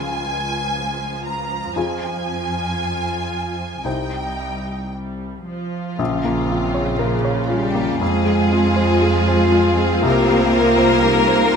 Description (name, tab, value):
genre	cinematic, emotional film score for orchestra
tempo	55-61 BPM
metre	4/4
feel	rubato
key	F minor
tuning	A4 = 440 Hz
part	warm studio violin section	melody	0.0-11.6 s	F5 to Bb5	-28 LUFS	equal	none
part	clear studio viola section	accompaniment	0.0-11.6 s	Db3 to F4	-27 LUFS	right 2 dB	none
part	felt-muted upright piano	accompaniment	0.0-11.6 s	Bb1 to Db5	-25 LUFS	left 2 dB	none
part	rich studio cello section	bass	0.0-11.6 s	C2 to Bb3	-23 LUFS	right 2 dB	none
part	rich studio violin section	second line	5.5-11.6 s	F4 to Bb4	-22 LUFS	left 2 dB	none
part	mellow clarinet	second line	6.0-11.6 s	Bb3 to G4	-23 LUFS	left 1 dB	none
part	dark French horn section	sustained chords	6.0-11.6 s	Db3 to F4	-24 LUFS	left 5 dB	none
part	rich studio double bass section	bass	6.0-11.6 s	Bb1 to F2	-22 LUFS	right 3 dB	none
room	light reverb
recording	close, detailed microphones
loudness	-17 LUFS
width	side -6 dB against mid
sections	0.0-6.0 A section; 6.0-11.6 A section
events	none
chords	0.0 Db; 1.8 Fm; 3.9 Cm; 6.0 Bbm; 8.0 Fm; 10.0 Csus4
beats	0.75 | 1.76 2.79 3.85 4.93 | 6.00 7.01 8.01 9.03 | 10.05 11.04